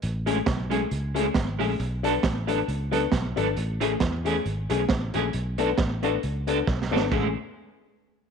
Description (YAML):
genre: ska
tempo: 135 BPM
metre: 4/4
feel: swing 55% on 8ths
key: A major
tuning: A4 = 441 Hz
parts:
  - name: fingered electric bass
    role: bass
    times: 0.0-7.3 s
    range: G#1 to E2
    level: -29 LUFS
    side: equal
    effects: none
  - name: crunchy breakbeat drum kit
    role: drums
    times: 0.0-7.2 s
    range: crash cymbal, hi-hat, kick drum, snare drum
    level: -28 LUFS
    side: right 3 dB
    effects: slapback echo
  - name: clean electric guitar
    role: accompaniment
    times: 0.3-7.3 s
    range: E3 to A4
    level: -30 LUFS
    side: right 11 dB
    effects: tremolo, slapback echo
  - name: warm upright piano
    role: stabs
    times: 0.3-7.3 s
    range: A3 to A4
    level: -28 LUFS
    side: left 11 dB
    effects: none
room: light reverb, small room ambience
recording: 1960s-style stereo with parts hard left and right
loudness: -23 LUFS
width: side -6 dB against mid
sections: 0.0-7.1 A section; 7.1-8.3 B section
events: drum fill 6.7-7.1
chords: 0.0 Amaj7; 1.8 Bm7; 3.6 Amaj7; 5.3 Bm7; 7.1 Amaj7